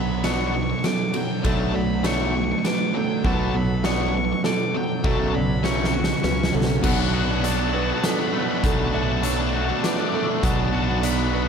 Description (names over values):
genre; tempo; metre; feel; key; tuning
post-rock; 100 BPM; 3/4; straight; B minor; A4 = 441 Hz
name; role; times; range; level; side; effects
octave-fuzz lead guitar; melody; 0.0-11.5 s; D5 to D6; -30 LUFS; left 3 dB; distortion, slapback echo, analog delay
pedal steel guitar; sustained chords; 0.0-6.8 s; C#3 to A4; -35 LUFS; right 1 dB; none
felt-muted upright piano; arpeggios; 0.0-11.5 s; A4 to F#5; -32 LUFS; right 5 dB; analog delay
twangy electric guitar; arpeggios; 0.0-11.5 s; B2 to F#4; -32 LUFS; left 3 dB; vibrato effect, analog delay
overdriven electric guitar; riff; 0.0-11.5 s; B2 to D4; -28 LUFS; left 10 dB; slapback echo
sludgy distorted guitar; riff; 0.0-11.5 s; F#2 to D4; -26 LUFS; right 12 dB; overdrive
fuzz fingered electric bass; bass; 0.0-11.5 s; B1 to C#2; -26 LUFS; equal; overdrive
oversized low-tuned drum kit; drums; 0.2-11.2 s; crash cymbal, hi-hat, kick drum, ride cymbal, snare drum; -26 LUFS; equal; none
room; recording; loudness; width
moderate recital hall reverb, RT60 1.4 s, small room ambience; big arena sound; -20 LUFS; side -6 dB against mid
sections
0.0-6.8 A section; 6.8-11.5 B section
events
build-up 0.0-6.8; drum fill 5.6-6.8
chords
0.0 Bm7; 1.4 D/B; 3.2 Bm7; 5.0 F#m/B; 6.8 Bm7; 8.6 D/B; 10.4 Bm7